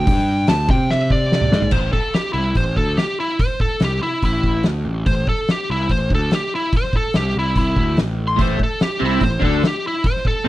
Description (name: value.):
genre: blues rock power trio and southern rock.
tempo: 144 BPM.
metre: 4/4.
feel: straight.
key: unclear.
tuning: A4 = 440 Hz.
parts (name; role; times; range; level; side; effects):
biting lead guitar; melody; 0.0-10.5 s; E4 to C6; -21 LUFS; equal; overdrive, slapback echo.
fuzz picked electric bass; bass; 0.0-10.5 s; A1 to C3; -21 LUFS; equal; overdrive.
oversized low-tuned drum kit; drums; 0.1-10.3 s; crash cymbal, hi-hat, kick drum, snare drum, toms; -20 LUFS; equal; none.
crunchy overdriven guitar; riff; 8.4-10.5 s; A2 to D4; -20 LUFS; equal; none.
room: little or no reverb.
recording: dry, close 1970s-style studio recording.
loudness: -16 LUFS.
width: side -16 dB against mid.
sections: 0.0-1.7 A section; 1.7-10.5 B section.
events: lead electric guitar solo 0.0-1.7; drum fill 0.9-1.7.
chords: 0.0 D5; 1.7 A5.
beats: | 0.08 0.49 0.90 1.32 | 1.73 2.15 2.56 2.98 | 3.39 3.81 4.23 4.64 | 5.06 5.48 5.89 6.31 | 6.72 7.14 7.55 7.97 | 8.39 8.80 9.21 9.63 | 10.04 10.46.